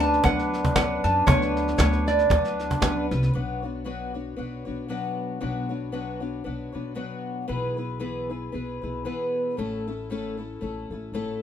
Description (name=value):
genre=acoustic folk duo or small band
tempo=116 BPM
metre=4/4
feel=swing 56% on 8ths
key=B dorian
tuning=A4 = 439 Hz
part: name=lap resonator guitar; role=melody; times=0.0-3.1 s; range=C#5 to A5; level=-24 LUFS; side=right 2 dB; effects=none
part: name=mellow accordion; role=second line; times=0.0-3.1 s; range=D4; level=-27 LUFS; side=right 1 dB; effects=none
part: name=fingerpicked twelve-string acoustic guitar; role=accompaniment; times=0.0-11.4 s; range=A2 to C#5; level=-30 LUFS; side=left 3 dB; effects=none
part: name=upright bass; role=bass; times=0.0-11.4 s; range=G#1 to F#2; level=-30 LUFS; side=equal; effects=none
part: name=soft brush drum kit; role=drums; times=0.0-3.3 s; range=kick drum, snare drum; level=-30 LUFS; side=left 1 dB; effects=none
part: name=cajon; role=percussion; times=0.0-3.3 s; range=none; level=-24 LUFS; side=right 1 dB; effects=none
room=moderate small room ambience, RT60 0.5 s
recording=minimal, uncompressed stereo recording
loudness=-24 LUFS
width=side -9 dB against mid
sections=0.0-3.3 A section; 3.3-11.4 B section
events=none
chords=0.0 Bmadd9/D; 3.3 Bmadd9; 7.5 E/B; 9.6 A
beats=0.24 0.75 | 1.27 1.78 2.30 2.82 | 3.34 3.86 4.38 4.89 | 5.41 5.93 6.45 6.97 | 7.49 8.01 8.53 9.05 | 9.57 10.09 10.61 11.12